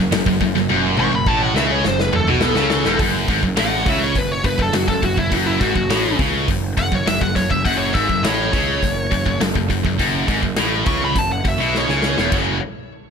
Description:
heavy metal; 103 BPM; 4/4; straight; F# minor; A4 = 441 Hz
heavy high-gain guitar; riff; 0.0-12.6 s; E2 to F#3; -22 LUFS; left 12 dB; distortion
high-gain distorted guitar; riff; 0.0-12.6 s; E2 to F#3; -24 LUFS; right 13 dB; distortion
high-gain distorted guitar; riff; 0.0-3.0 s; E2 to C#3; -24 LUFS; right 1 dB; distortion
fuzz picked electric bass; bass; 0.0-12.6 s; E1 to C#2; -24 LUFS; equal; overdrive
big rock drum kit; drums; 0.1-12.5 s; crash cymbal, hi-hat, kick drum, snare drum, toms; -22 LUFS; equal
high-gain lead guitar; melody; 1.0-12.3 s; E4 to C#6; -23 LUFS; left 1 dB; distortion
small room ambience; -16 LUFS; side -6 dB against mid
0.0-3.0 A section; 3.0-12.3 B section
lead electric guitar solo 0.0-3.0, 3.0-12.3; drum fill 0.7-3.0, 11.7-12.3
0.0 F#m; 12.3 F#5

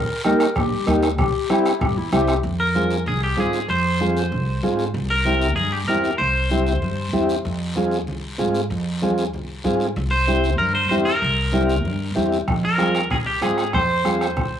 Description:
latin, cumbia; 191 BPM; 4/4; straight; F harmonic minor; A4 = 440 Hz
breathy clarinet; second line; 0.0-2.4 s; E4 to Bb4; -25 LUFS; left 6 dB; cassette tape
upright bass; bass; 0.0-14.6 s; Bb1 to Ab2; -24 LUFS; equal
overdriven combo organ; accompaniment; 0.2-14.3 s; Bb3 to Ab4; -22 LUFS; equal; cassette tape
bombo; percussion; 0.2-2.4, 12.5-14.5 s; -25 LUFS; equal
guiro; percussion; 0.2-14.6 s; -35 LUFS; left 6 dB
congas; percussion; 0.3-14.5 s; -28 LUFS; left 1 dB
twangy electric guitar; melody; 2.6-7.2, 10.1-14.6 s; G4 to C5; -22 LUFS; equal
moderate spring reverb, RT60 1.3 s, studio ambience; home recording on cassette; -18 LUFS; side -9 dB against mid
0.0-2.4 A section; 2.4-14.6 B section
0.0 Eb; 1.2 C; 2.4 Fm; 4.9 C7; 7.5 Fm; 10.0 C7; 12.5 Fm

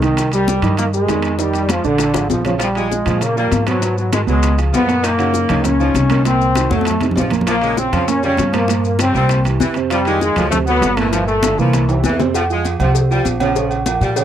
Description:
latin, salsa; 197 BPM; 4/4; straight; F minor; A4 = 439 Hz
bright trombone section; melody; 0.0-12.0 s; D3 to Db4; -18 LUFS; left 2 dB
dark grand piano; accompaniment; 0.0-14.2 s; A2 to Eb5; -21 LUFS; right 10 dB
upright bass; bass; 0.0-14.2 s; G1 to Bb2; -19 LUFS; left 1 dB
bongos and cowbell; percussion; 0.0-14.2 s; -25 LUFS; left 8 dB
congas; percussion; 0.0-14.2 s; -24 LUFS; left 2 dB
maracas; percussion; 0.0-14.2 s; -31 LUFS; left 19 dB
timbales and agogo bells; percussion; 0.0-14.2 s; -26 LUFS; right 5 dB
clear saxophone section; second line; 2.6-14.2 s; Eb3 to Ab3; -24 LUFS; left 1 dB
little or no reverb; dry, close 1970s-style studio recording; -14 LUFS; side -10 dB against mid
0.0-2.6 A section; 2.6-12.3 B section; 12.3-14.2 C section
drum fill 2.0-2.6, 6.7-7.5, 11.1-12.3
0.2 Cm7; 1.4 Fm9; 2.0 Bb7; 2.6 Bbm7; 3.8 Abm7; 4.4 Db7; 5.0 Gb6; 6.3 Cm7b5; 6.9 F7; 7.5 Bbmadd9; 8.7 Gm7b5; 9.3 C7; 9.9 Fm9; 10.5 D7; 11.1 Gm9; 11.7 C7; 12.3 Fm; 13.6 Bbm

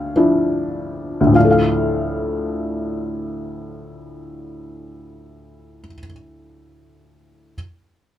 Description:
classical, lyrical solo piano; 49 BPM; 3/4; rubato; D minor; A4 = 439 Hz
felt-muted upright piano; solo; 0.0-7.6 s; D2 to G5; -18 LUFS; left 1 dB
moderate small room ambience, RT60 0.5 s; dark, warm production; -16 LUFS; side -11 dB against mid
0.0-1.4 A section; 1.4-5.0 B section
slowing down 0.0-1.4
0.0 Dmadd9; 1.4 Dm

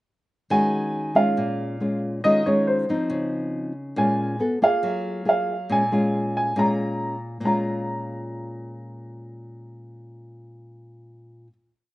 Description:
bossa nova; 139 BPM; 4/4; straight; Bb minor; A4 = 440 Hz
warm baby grand piano; melody; 0.5-11.5 s; C5 to Bb5; -23 LUFS; right 1 dB
nylon-string guitar; accompaniment; 0.5-11.5 s; Bb2 to A4; -25 LUFS; left 1 dB
light reverb; recorded outdoors, with no room sound, nothing above 10.9 kHz; -21 LUFS; side -17 dB against mid
0.5-7.4 A section; 7.4-10.9 final chord
0.5 Ebm11; 1.4 Bbm7; 2.2 Eb9sus4; 3.1 Dbmaj9; 4.0 Bbm7; 4.4 Abm13; 4.8 Gbmaj9; 5.7 Bbm7

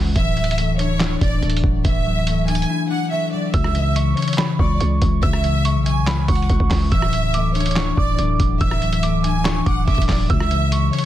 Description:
hip hop, trap; 142 BPM; 4/4; half-time; C# phrygian; A4 = 441 Hz
concert harp; accompaniment; 0.0-11.1 s; C#3 to C#5; -22 LUFS; left 5 dB; low-pass filter
growling 808-style bass; bass; 0.0-10.9 s; D1 to C#2; -21 LUFS; equal
rich studio violin section; second line; 0.2-11.1 s; C#5 to G#5; -26 LUFS; right 2 dB; ping-pong delay
lo-fi sampler-style drum kit; drums; 0.2-11.0 s; handclaps, hi-hat, kick drum, rim click, snare drum; -20 LUFS; equal
muted felt-like synth keys; melody; 3.5-11.1 s; B5 to E6; -26 LUFS; right 3 dB; chorus, low-pass filter
light reverb, digital ambience; dense, heavily limited modern master; -16 LUFS; side -12 dB against mid
0.0-3.5 A section; 3.5-11.1 B section
break 2.7-3.5
0.2 Dadd9; 3.5 C#m; 6.9 Dadd9; 10.3 C#m

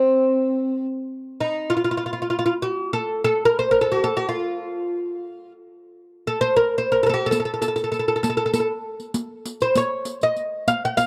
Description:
Persian modal ensemble; 99 BPM; 4/4; straight; F dastgah homayun; A4 = 441 Hz
oud; melody; 0.0-11.1 s; C4 to Gb5+45c; -22 LUFS; equal
riq; percussion; 7.3-11.1 s; -31 LUFS; equal
small room ambience; dry, close 1970s-style studio recording; -22 LUFS; mono
0.0-11.1 A section

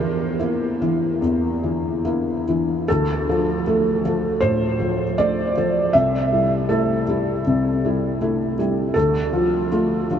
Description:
neoclassical minimalist piano; 71-81 BPM; 4/4; rubato; D minor; A4 = 444 Hz
felt-muted upright piano; solo; 0.0-10.2 s; C2 to E5; -18 LUFS; equal; lush chorus, tape echo
wet huge ambient reverb, RT60 7.4 s; dreamy mix soaked in reverb, nothing above 7.9 kHz; -18 LUFS; side -8 dB against mid
0.0-2.9 A section; 2.9-10.2 B section
0.0 Edim; 2.9 Dm; 5.9 Am7/C; 8.9 Dm

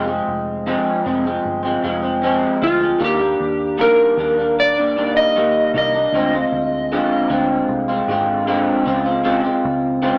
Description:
indie pop, bedroom pop; 77 BPM; 4/4; straight; Eb major; A4 = 440 Hz
electric guitar through a small old amp; accompaniment; 0.0-10.2 s; F2 to F4; -20 LUFS; equal; analog chorus, warbly pitch drift
vintage muted picked electric bass; bass; 0.0-10.1 s; F1 to Eb2; -34 LUFS; equal
electric slide guitar; melody; 2.6-7.3 s; F4 to Eb5; -19 LUFS; equal; subtle chorus, slapback echo
moderate small room reverb, RT60 0.5 s; small speaker sound; -18 LUFS; mono
0.0-10.2 A section
0.0 Fm; 3.0 Ebmaj7; 6.1 Dm7b5; 8.9 Dbmaj7

